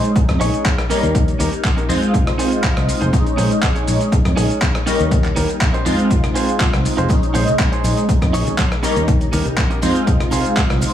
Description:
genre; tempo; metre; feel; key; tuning
filtered disco house; 121 BPM; 4/4; straight; Bb dorian; A4 = 440 Hz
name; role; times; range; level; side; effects
funky polysynth comp; accompaniment; 0.0-10.9 s; G3 to F4; -20 LUFS; left 1 dB; chorus, phaser, sidechain pumping
direct-recorded clean electric guitar; riff; 0.0-10.6 s; Db4 to Ab5; -24 LUFS; right 3 dB; sidechain pumping
dusty soul sampler-style drum kit; drums; 0.0-10.9 s; handclaps, hi-hat, rim click, shaker; -24 LUFS; equal; overdrive
modern bright fingered electric bass; bass; 0.2-10.8 s; F1 to F2; -20 LUFS; equal; sidechain pumping
electronic kick drum; drums; 0.2-10.7 s; none; -18 LUFS; equal; none
maracas and congas; percussion; 7.1-10.9 s; none; -28 LUFS; left 1 dB; sidechain pumping on perc
room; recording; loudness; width
digital ambience; small room ambience; -14 LUFS; side -10 dB against mid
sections
0.0-10.9 A section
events
clean electric guitar fill 2.1-3.1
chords
0.0 Bbm11; 0.9 Eb7; 1.9 Fm7; 3.1 Bbm11; 4.9 Eb7; 5.9 Fm7; 7.1 Bbm11; 8.8 Eb7; 9.8 Fm7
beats
0.16 0.65 | 1.15 1.64 2.14 2.64 | 3.13 3.63 4.12 4.62 | 5.12 5.61 6.11 6.60 | 7.10 7.59 8.09 8.59 | 9.08 9.58 10.07 10.57

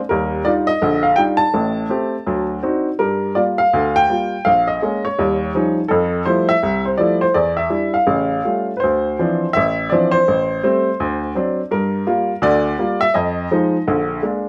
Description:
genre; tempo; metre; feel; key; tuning
solo jazz; 166 BPM; 4/4; swing 64% on 8ths, rubato; D minor from 8.8 s; A4 = 442 Hz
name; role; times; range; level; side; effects
clear upright piano; solo; 0.1-14.5 s; A1 to A5; -18 LUFS; equal; none
room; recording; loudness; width
light reverb; none; -18 LUFS; mono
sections
0.0-8.8 A section; 8.8-14.5 B section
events
none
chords
0.1 Ebmaj9; 1.5 Am7; 2.3 D7b9; 3.0 Gm7; 4.5 Bbm7; 5.2 Eb9; 5.9 Fmaj9; 7.3 Em7; 8.1 Aaug7; 8.8 Dm9; 10.3 Am7; 11.0 D7; 11.7 Gm7; 13.1 Fm7; 13.9 Bb7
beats
| 0.10 0.46 0.82 1.18 | 1.53 1.90 2.26 2.63 | 3.00 3.37 3.74 4.10 | 4.46 4.83 5.18 5.54 | 5.90 6.26 6.62 6.99 | 7.35 7.71 8.07 8.45 | 8.82 9.19 9.56 9.92 | 10.28 10.64 11.01 11.36 | 11.71 12.07 12.43 12.79 | 13.15 13.51 13.88 14.24

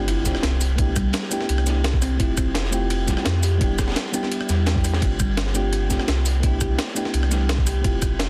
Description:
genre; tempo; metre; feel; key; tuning
liquid drum and bass; 170 BPM; 4/4; straight; C major; A4 = 440 Hz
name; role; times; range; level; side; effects
mellow FM electric piano; accompaniment; 0.0-8.3 s; G3 to G4; -30 LUFS; equal; chorus, cassette tape, delay
saturated sub bass; bass; 0.0-8.3 s; E1 to F2; -25 LUFS; equal; none
sub drop; sound effects; 0.3-0.8 s; none; -36 LUFS; equal; none
harp-like synth pluck; arpeggios; 0.1-7.8 s; G3 to G4; -34 LUFS; equal; chorus, delay
breakbeat sampler-style drum kit; drums; 0.1-8.3 s; hi-hat, rim click, shaker, snare drum; -30 LUFS; equal; none
crunchy breakbeat drum kit; drums; 0.1-8.3 s; ride cymbal, snare drum; -34 LUFS; equal; high-pass filter on cymbals, high-pass filter on snare, high-pass filter on room
electronic kick drum; drums; 0.3-8.1 s; none; -25 LUFS; equal; none
room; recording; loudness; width
light reverb; dense, heavily limited modern master; -22 LUFS; mono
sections
0.0-8.3 A section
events
impact 0.0-0.8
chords
0.0 G7sus4; 0.6 Cmaj13; 2.2 Fmaj9; 3.6 Em7; 5.0 G7sus4; 6.3 Cmaj13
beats
0.08 0.43 | 0.79 1.14 1.49 1.84 | 2.20 2.55 2.90 3.26 | 3.61 3.96 4.32 4.67 | 5.02 5.37 5.73 6.08 | 6.43 6.79 7.14 7.49 | 7.84 8.20

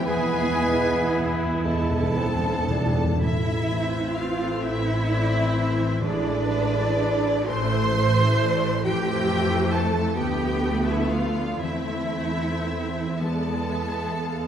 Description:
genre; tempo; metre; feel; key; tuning
classical, slow romantic movement for symphony orchestra; 37-46 BPM (dotted quarters); 6/8; rubato; A minor; A4 = 440 Hz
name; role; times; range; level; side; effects
rich studio violin section; melody; 0.0-14.5 s; B4 to G#5; -35 LUFS; left 5 dB; none
bright silver concert flute; second line; 0.0-1.6 s; B4; -33 LUFS; left 1 dB; none
mellow clarinet; second line; 0.0-2.8 s; E4; -33 LUFS; left 1 dB; none
rich studio violin section; second line; 0.0-14.5 s; G#4 to C6; -32 LUFS; left 4 dB; none
mellow bassoon; accompaniment; 0.0-3.2 s; G#3 to D4; -29 LUFS; right 3 dB; none
warm studio viola section; accompaniment; 0.0-14.5 s; E3 to E4; -29 LUFS; equal; none
clear trombone section; sustained chords; 0.0-2.9 s; E3 to B3; -33 LUFS; right 4 dB; none
concert harp; arpeggios; 0.0-14.5 s; A2 to E6; -32 LUFS; left 4 dB; none
dark studio double bass section; bass; 0.0-14.5 s; A1 to F2; -28 LUFS; right 1 dB; none
warm chamber cello section; bass; 0.0-14.5 s; D4 to C5; -28 LUFS; right 4 dB; none
clear oboe; second line; 0.1-1.6 s; G#4; -36 LUFS; left 1 dB; none
mellow French horn section; sustained chords; 0.1-1.6 s; G#3; -36 LUFS; left 4 dB; none
clear trumpet section; stabs; 0.1-1.6 s; G#4; -38 LUFS; right 1 dB; none
timpani; percussion; 0.1-7.5 s; E2 to A2; -28 LUFS; equal; none
room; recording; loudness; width
wet scoring stage reverb, RT60 1.6 s; none; -21 LUFS; side -9 dB against mid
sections
0.0-3.2 A section; 3.2-14.5 B section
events
timpani fill 0.1-3.2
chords
0.1 E; 3.2 Am; 6.0 E7/A; 7.5 Am; 8.9 Fmaj7; 10.2 Bm7b5/D; 11.6 Am/E; 13.2 E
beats
| 0.06 1.65 | 3.22 4.64 | 6.02 7.50 | 8.86 10.18 | 11.62 13.21

